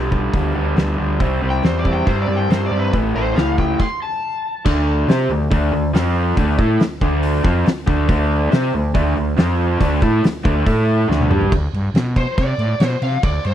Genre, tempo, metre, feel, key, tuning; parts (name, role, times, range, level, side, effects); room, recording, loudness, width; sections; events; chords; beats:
blues rock power trio and southern rock; 140 BPM; 4/4; straight; A4 = 440 Hz
raw garage guitar; riff; 0.0-11.5 s; G2 to C5; -19 LUFS; equal; overdrive
growling FM bass; bass; 0.0-13.5 s; A1 to C3; -20 LUFS; equal
oversized low-tuned drum kit; drums; 0.1-13.5 s; crash cymbal, hi-hat, kick drum, snare drum, toms; -20 LUFS; equal
overdriven slide guitar; melody; 1.5-4.6, 12.2-13.5 s; B4 to C6; -24 LUFS; left 2 dB
studio reverb; dry, close 1970s-style studio recording; -15 LUFS; side -11 dB against mid
0.0-4.7 A section; 4.7-11.5 B section; 11.5-13.5 C section
stop 3.8-4.7; drum fill 11.1-11.5; electric slide guitar solo 11.5-13.5
0.0 G; 1.2 C; 2.9 A; 4.7 D5; 5.9 F5; 6.4 D5; 9.4 F5; 9.8 D5; 10.7 A5; 11.1 D5
0.34 0.77 | 1.21 1.64 2.07 2.50 | 2.93 3.37 3.80 4.23 | 4.66 5.09 5.52 5.95 | 6.38 6.80 7.23 7.66 | 8.09 8.52 8.95 9.37 | 9.80 10.23 10.66 11.09 | 11.52 11.95 12.38 12.80 | 13.23